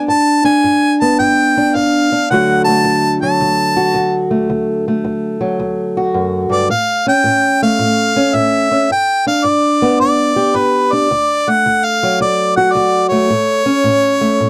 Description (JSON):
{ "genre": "acoustic country blues, solo or duo", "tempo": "109 BPM", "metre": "4/4", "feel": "swing 66% on 8ths", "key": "D major", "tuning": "A4 = 441 Hz", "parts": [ { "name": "clear harmonica", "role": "melody", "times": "0.0-14.5 s", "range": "B4 to A5", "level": "-16 LUFS", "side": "equal", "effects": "none" }, { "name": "fingerpicked old ladder-braced acoustic guitar", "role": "accompaniment", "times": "0.0-14.5 s", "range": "D2 to G4", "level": "-17 LUFS", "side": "equal", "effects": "none" } ], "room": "little or no reverb", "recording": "dry, close 1970s-style studio recording", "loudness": "-14 LUFS", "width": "mono", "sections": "0.0-14.5 A section", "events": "none", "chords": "0.0 G; 2.3 D; 6.7 A; 8.9 G; 11.1 D; 13.3 A" }